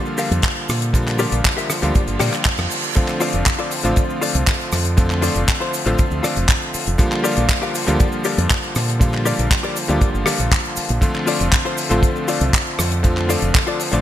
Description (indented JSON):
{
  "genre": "nu-disco, nu disco",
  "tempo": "119 BPM",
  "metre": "4/4",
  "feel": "straight",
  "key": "F major",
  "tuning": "A4 = 440 Hz",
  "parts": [
    { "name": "clear electric grand piano", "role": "accompaniment", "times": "0.0-14.0 s", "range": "D3 to F4", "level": "-22 LUFS", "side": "equal", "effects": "vintage 12-bit sampler grit, sidechain pumping, ping-pong delay" },
    { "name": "cabasa", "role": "percussion", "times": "0.1-14.0 s", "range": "none", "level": "-33 LUFS", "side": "right 4 dB", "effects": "none" },
    { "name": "direct-recorded clean electric guitar", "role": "riff", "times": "0.2-14.0 s", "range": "F4 to G5", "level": "-25 LUFS", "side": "left 4 dB", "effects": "analog chorus, low-pass filter, ping-pong delay" },
    { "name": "damped 70s drum kit", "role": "drums", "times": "0.2-14.0 s", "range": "handclaps, hi-hat, rim click", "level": "-22 LUFS", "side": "left 1 dB", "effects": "gated reverb" },
    { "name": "fingered electric bass with an envelope filter", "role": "bass", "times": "0.3-14.0 s", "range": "F1 to Bb2", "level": "-20 LUFS", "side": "equal", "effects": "none" },
    { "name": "kick drum", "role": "drums", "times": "0.4-13.7 s", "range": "none", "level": "-17 LUFS", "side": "equal", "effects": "none" },
    { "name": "reverse cymbal", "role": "sound effects", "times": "2.1-3.0 s", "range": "none", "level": "-28 LUFS", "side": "right 5 dB", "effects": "none" }
  ],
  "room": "light reverb",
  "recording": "bright 1980s-style digital production",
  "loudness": "-16 LUFS",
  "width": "side -12 dB against mid",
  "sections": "0.0-14.0 A section",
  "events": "clean electric guitar fill 2.0-3.0; reverse cymbal 2.1-3.0",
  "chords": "0.0 Bb6; 3.0 F6; 7.0 Bb6; 11.0 F6"
}